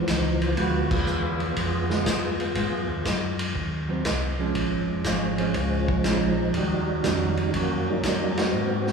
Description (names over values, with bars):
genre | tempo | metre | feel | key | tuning
soul jazz organ trio | 121 BPM | 4/4 | swing 68% on 8ths | unclear | A4 = 440 Hz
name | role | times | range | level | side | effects
percussive tonewheel organ | melody | 0.0-8.9 s | E3 to Ab4 | -26 LUFS | equal | slow rotary speaker, overdrive, chorus vibrato
mellow tonewheel organ | bass | 0.1-8.9 s | F1 to Ab2 | -29 LUFS | equal | slow rotary speaker
vintage drum kit | drums | 0.1-8.9 s | crash cymbal, hi-hat, kick drum, ride cymbal, snare drum | -28 LUFS | equal | none
vintage hollow-body jazz guitar | accompaniment | 0.6-7.8 s | D3 to F#4 | -31 LUFS | right 4 dB | none
room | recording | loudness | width
wet cathedral reverb, RT60 4.4 s | recorded in a church or concert hall, studio reverb | -22 LUFS | side -5 dB against mid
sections
0.0-8.9 A section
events
band accent 0.8, 8.3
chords
0.0 Db(#9); 0.6 Ddim7; 2.6 Ab7#9; 4.5 Bbm7; 6.5 Eb7#9